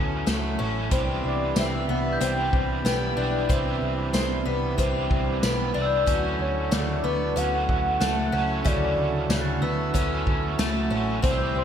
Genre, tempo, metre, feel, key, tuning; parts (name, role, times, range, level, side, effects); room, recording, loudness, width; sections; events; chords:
dream pop; 93 BPM; 4/4; straight; D major; A4 = 440 Hz
overdriven electric guitar; accompaniment; 0.0-11.6 s; C3 to A4; -32 LUFS; right 5 dB; harmonic tremolo, ensemble chorus
pedal harmonium; sustained chords; 0.0-11.6 s; E3 to D5; -32 LUFS; right 2 dB
fingerpicked twelve-string acoustic guitar; arpeggios; 0.0-11.6 s; C#3 to D4; -28 LUFS; left 4 dB; wide subtle chorus, digital delay
vintage muted picked electric bass; bass; 0.0-11.6 s; A1 to D2; -29 LUFS; equal
vintage drum kit; drums; 0.3-11.4 s; hi-hat, kick drum, snare drum, tambourine; -27 LUFS; equal; gated reverb
warm velvety synth lead; melody; 1.3-11.6 s; C5 to G5; -29 LUFS; right 1 dB; chorus, digital delay
glockenspiel with soft plastic mallets; texture; 2.1-11.6 s; E6 to B6; -36 LUFS; right 2 dB; digital delay
moderate lush hall reverb, RT60 1.9 s, studio reverb; bright 1980s-style digital production; -22 LUFS; side -8 dB against mid
0.0-11.6 A section
0.0 Dmaj7; 0.9 Cmaj7; 6.1 Dmaj7